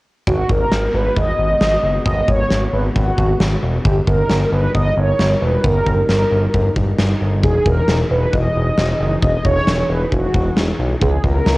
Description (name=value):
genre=synth-pop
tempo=134 BPM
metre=4/4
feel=straight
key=G# minor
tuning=A4 = 440 Hz
part: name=mellow synth brass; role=melody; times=0.3-11.6 s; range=F#4 to D#5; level=-19 LUFS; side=right 1 dB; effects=chorus, cassette tape
part: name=warm analog pad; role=sustained chords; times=0.3-11.6 s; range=C#3 to A#4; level=-26 LUFS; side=equal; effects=chorus
part: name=smooth synth bass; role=bass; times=0.3-11.6 s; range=E1 to C#2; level=-18 LUFS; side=equal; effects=none
part: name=huge arena drum kit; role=drums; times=0.3-11.6 s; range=kick drum, snare drum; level=-20 LUFS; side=equal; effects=none
room=light reverb, studio reverb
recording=home recording on cassette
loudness=-14 LUFS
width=side -20 dB against mid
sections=0.3-11.6 A section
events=none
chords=0.3 G#m7; 3.9 D#; 7.4 Emaj7; 11.0 C#m7